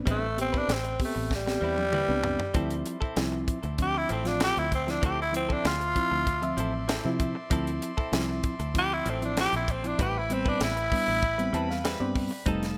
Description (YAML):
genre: straight-eighth soul blues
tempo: 97 BPM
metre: 4/4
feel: straight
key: A minor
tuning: A4 = 440 Hz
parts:
  - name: mellow reed electric piano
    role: accompaniment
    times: 0.0-12.8 s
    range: F3 to A5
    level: -35 LUFS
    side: equal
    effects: none
  - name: growling tenor saxophone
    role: melody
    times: 0.1-11.8 s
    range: G3 to G4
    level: -31 LUFS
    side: equal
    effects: none
  - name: direct-recorded clean electric guitar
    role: stabs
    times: 0.1-12.7 s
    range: F3 to B4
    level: -40 LUFS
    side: equal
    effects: digital delay
  - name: fingered electric bass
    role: bass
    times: 0.1-12.7 s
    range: F1 to C3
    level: -36 LUFS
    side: equal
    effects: none
  - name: tight funk drum kit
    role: drums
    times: 0.1-12.8 s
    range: hi-hat, kick drum, snare drum, toms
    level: -34 LUFS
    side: equal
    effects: none
  - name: brilliant horn section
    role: sustained chords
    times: 2.5-12.8 s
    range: B4 to C6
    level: -43 LUFS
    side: equal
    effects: none
room: light reverb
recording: none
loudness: -28 LUFS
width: mono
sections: 0.0-12.8 A section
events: tenor saxophone solo 0.0-12.8; drum fill 1.3-2.6; reed electric piano fill 11.2-12.5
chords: 0.0 Am9; 2.6 Dm9; 10.0 Am9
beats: | 0.07 0.69 1.31 1.93 | 2.55 3.17 3.79 4.41 | 5.03 5.65 6.27 6.89 | 7.51 8.13 8.75 9.37 | 9.99 10.61 11.23 11.85 | 12.47